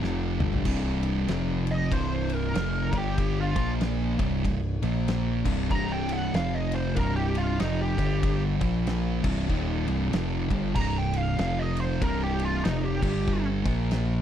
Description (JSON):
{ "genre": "stoner and doom metal", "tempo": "95 BPM", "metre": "4/4", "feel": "swing 60% on 8ths", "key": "C minor", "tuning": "A4 = 440 Hz", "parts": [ { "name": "fuzz guitar", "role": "riff", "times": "0.0-14.2 s", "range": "C2 to Bb3", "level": "-30 LUFS", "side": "left 10 dB", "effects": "distortion" }, { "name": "thick fuzz guitar", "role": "riff", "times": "0.0-14.2 s", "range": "C2 to Bb3", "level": "-30 LUFS", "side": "right 8 dB", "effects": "distortion" }, { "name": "growling picked electric bass", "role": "bass", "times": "0.0-14.2 s", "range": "C1 to Bb1", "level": "-30 LUFS", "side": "equal", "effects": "overdrive" }, { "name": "oversized low-tuned drum kit", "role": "drums", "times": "0.0-14.1 s", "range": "crash cymbal, kick drum, ride cymbal, snare drum, toms", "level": "-32 LUFS", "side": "equal", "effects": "none" }, { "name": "fuzz lead guitar", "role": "melody", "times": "1.7-13.5 s", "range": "Eb4 to Bb5", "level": "-32 LUFS", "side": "right 1 dB", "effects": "wah, distortion, slapback echo" } ], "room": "little or no reverb", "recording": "dry, close 1970s-style studio recording", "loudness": "-24 LUFS", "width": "side -10 dB against mid", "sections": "0.7-14.2 A section", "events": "drum fill 0.0-0.7; lead electric guitar solo 0.7-14.2", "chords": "0.0 C5; 1.3 F5; 1.9 C5; 2.9 G5; 3.5 Bb5; 4.1 C5; 4.8 Bb5; 5.4 C5; 6.3 F5; 7.0 C5; 7.9 G5; 8.5 Bb5; 9.2 Cm; 11.4 F5; 12.0 C5; 13.0 G5; 13.6 Bb5", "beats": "0.02 | 0.65 1.29 1.92 2.55 | 3.18 3.81 4.44 5.07 | 5.70 6.33 6.97 7.60 | 8.23 8.86 9.49 10.12 | 10.75 11.38 12.02 12.65 | 13.28 13.91" }